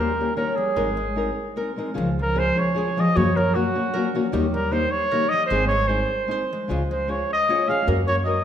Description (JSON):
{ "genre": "mexican folk, mariachi", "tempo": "152 BPM", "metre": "3/4", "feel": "rubato", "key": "Db major", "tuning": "A4 = 440 Hz", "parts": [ { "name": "mellow trumpet", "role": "melody", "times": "0.0-8.4 s", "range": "Gb4 to F5", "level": "-23 LUFS", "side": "equal", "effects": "none" }, { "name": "nylon-string guitar", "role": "accompaniment", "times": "0.0-8.4 s", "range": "Gb2 to Bb4", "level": "-27 LUFS", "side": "left 4 dB", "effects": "none" }, { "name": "concert harp", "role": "arpeggios", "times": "0.0-8.4 s", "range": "F3 to Db5", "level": "-26 LUFS", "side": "right 1 dB", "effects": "none" }, { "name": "upright bass", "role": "bass", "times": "0.0-8.4 s", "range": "Ab1 to Gb2", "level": "-27 LUFS", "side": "right 1 dB", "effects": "none" } ], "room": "wet recital hall reverb, RT60 1.4 s", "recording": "minimal, uncompressed stereo recording", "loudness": "-20 LUFS", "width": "side -9 dB against mid", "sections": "0.0-2.0 A section; 2.0-8.4 B section", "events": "none", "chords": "0.0 Eb7; 0.8 Abadd9; 2.0 Db; 3.2 Gb; 4.3 Eb; 5.5 Ab; 6.7 Db; 7.9 Gb", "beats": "0.36 | 0.76 1.16 1.56 | 1.97 2.38 2.77 | 3.17 3.55 3.94 | 4.33 4.73 5.12 | 5.51 5.90 6.30 | 6.70 7.10 7.49 | 7.88 8.27" }